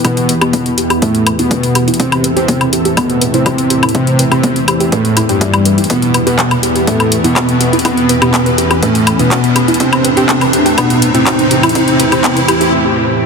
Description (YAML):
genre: melodic techno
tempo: 123 BPM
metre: 4/4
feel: straight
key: unclear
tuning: A4 = 440 Hz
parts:
  - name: fat analog lead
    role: melody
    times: 0.0-12.4 s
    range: G3 to C4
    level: -16 LUFS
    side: equal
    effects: cassette tape, sidechain pumping, ping-pong delay
  - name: big bright polysynth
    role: second line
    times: 0.0-12.4 s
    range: G2 to C3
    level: -17 LUFS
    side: equal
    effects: wide subtle chorus, sidechain pumping
  - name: lush unison pad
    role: sustained chords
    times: 0.0-13.3 s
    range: E2 to E5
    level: -20 LUFS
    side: equal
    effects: chorus, sidechain pumping
  - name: warbly dusty pluck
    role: arpeggios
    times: 0.0-12.7 s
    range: B3 to E5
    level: -19 LUFS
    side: right 1 dB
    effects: chorus, sidechain pumping, ping-pong delay
  - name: analog drone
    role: drone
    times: 0.0-12.7 s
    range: E2 to E3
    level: -23 LUFS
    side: left 1 dB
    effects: chorus, sidechain pumping
  - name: electronic kick drum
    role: drums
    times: 0.0-12.3 s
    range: none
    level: -21 LUFS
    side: equal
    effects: high-pass filter on kick
  - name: techno drum kit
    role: drums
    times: 0.0-12.7 s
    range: handclaps, hi-hat, woodblock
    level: -16 LUFS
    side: left 2 dB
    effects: high-pass filter on hats, high-pass filter on perc, high-pass filter on snare
  - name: riser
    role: sound effects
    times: 4.7-12.7 s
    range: none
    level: -18 LUFS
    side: right 1 dB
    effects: none
room: moderate huge ambient reverb, RT60 4.3 s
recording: dense, heavily limited modern master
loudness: -9 LUFS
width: side -5 dB against mid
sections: 0.0-13.3 A section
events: build-up 0.0-13.3; filter sweep on synth arpeggio sound 0.0-13.3; riser 4.7-12.7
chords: 0.0 Em; 2.0 Am; 5.9 Em; 9.8 Am